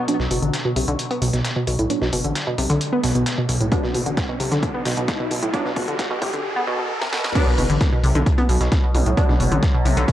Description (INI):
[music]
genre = driving peak-time techno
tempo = 132 BPM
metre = 4/4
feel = straight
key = B phrygian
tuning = A4 = 440 Hz
[part]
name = overtone-sweeping drone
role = drone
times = 0.0-0.1, 8.0-10.1 s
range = B2 to F#3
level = -31 LUFS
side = equal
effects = chorus, built-in reverb, sidechain pumping
[part]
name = rave stab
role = stabs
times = 0.1-9.3 s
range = F#3 to D4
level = -27 LUFS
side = right 2 dB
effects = chorus, built-in reverb, sidechain pumping, tape echo
[part]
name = dusty soul sampler-style drum kit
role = drums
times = 0.1-10.1 s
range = hi-hat, snare drum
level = -31 LUFS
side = left 1 dB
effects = overdrive, sidechain pumping on hats, high-pass filter on hats, low-pass filter on hats, high-pass filter on snare, low-pass filter on snare, high-pass filter on room, low-pass filter on room
[part]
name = techno drum kit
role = drums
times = 0.1-10.1 s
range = crash cymbal, hi-hat, snare drum, toms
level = -29 LUFS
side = left 1 dB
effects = sidechain pumping on toms, sidechain pumping on hats, sidechain pumping on cymbals
[part]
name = riser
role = sound effects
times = 2.5-7.4 s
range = none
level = -30 LUFS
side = equal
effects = none
[part]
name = analog pluck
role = riff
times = 0.2-10.0 s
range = A2 to B3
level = -22 LUFS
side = equal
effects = chorus, tube saturation, sidechain pumping, tape echo
[part]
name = growling FM bass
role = bass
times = 0.2-10.1 s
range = F#1 to B1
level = -24 LUFS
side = equal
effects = sidechain pumping
[part]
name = electronic kick drum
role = drums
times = 3.7-10.1 s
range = none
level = -20 LUFS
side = equal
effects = none
[sound]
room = moderate lush hall reverb, RT60 1.7 s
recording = dry, gritty hardware recording, transformer saturation, cassette tape, high-pass filter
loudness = -18 LUFS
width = side -12 dB against mid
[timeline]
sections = 0.1-7.4 A section; 7.4-10.1 B section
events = build-up 0.1-7.4; filter sweep on synth arpeggio sound 0.1-7.4; filter sweep on synth stab 0.1-7.4; riser 2.5-7.4; drum fill 3.7-6.4, 7.0-7.4; drop 7.4-10.1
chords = 0.1 Bm